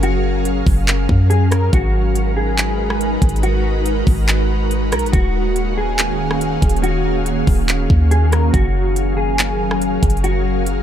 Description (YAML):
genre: hip hop, atmospheric cloud-rap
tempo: 141 BPM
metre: 4/4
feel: half-time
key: F# major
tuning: A4 = 441 Hz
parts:
  - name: mellow electric guitar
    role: melody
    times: 0.0-10.6 s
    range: F#4 to A#4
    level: -23 LUFS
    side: left 1 dB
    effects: ensemble chorus, low-pass filter, tape echo
  - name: ethereal airy pad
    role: sustained chords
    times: 0.0-10.8 s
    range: D#3 to E#5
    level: -21 LUFS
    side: equal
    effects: ensemble chorus, built-in reverb, sidechain pumping
  - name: warm 808-style bass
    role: bass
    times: 0.0-10.8 s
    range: D#1 to F#2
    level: -18 LUFS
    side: equal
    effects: none
  - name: trap drum kit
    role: drums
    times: 0.0-10.8 s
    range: handclaps, hi-hat, kick drum, rim click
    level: -18 LUFS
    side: equal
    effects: none
room: digital ambience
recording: none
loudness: -14 LUFS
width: side -10 dB against mid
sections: 0.0-8.5 A section; 8.5-10.8 A section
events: none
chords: 0.0 F#maj9; 1.7 G#m9; 5.1 D#m11; 8.5 F#maj9